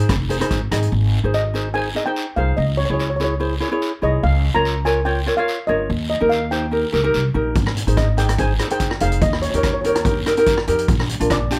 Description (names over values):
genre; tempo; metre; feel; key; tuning
calypso; 145 BPM; 4/4; straight; Ab major; A4 = 440 Hz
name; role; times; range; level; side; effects
ukulele; accompaniment; 0.0-11.6 s; D4 to Eb5; -23 LUFS; equal; none
upright bass; bass; 0.0-11.6 s; F1 to F2; -23 LUFS; equal; none
street-band drum kit; drums; 0.1-0.9, 7.6-11.6 s; hi-hat, kick drum, rim click; -24 LUFS; equal; none
guiro; percussion; 0.1-11.6 s; none; -34 LUFS; equal; none
steel pan; melody; 1.3-11.6 s; Db5 to Bb5; -26 LUFS; equal; none
room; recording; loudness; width
wet small room reverb, RT60 0.5 s; none; -19 LUFS; mono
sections
0.9-11.6 A section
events
none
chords
0.0 Ab; 2.6 Dbm; 4.2 Bbm/Db; 5.9 Eb; 7.6 Ab; 9.2 Eb; 10.9 Bb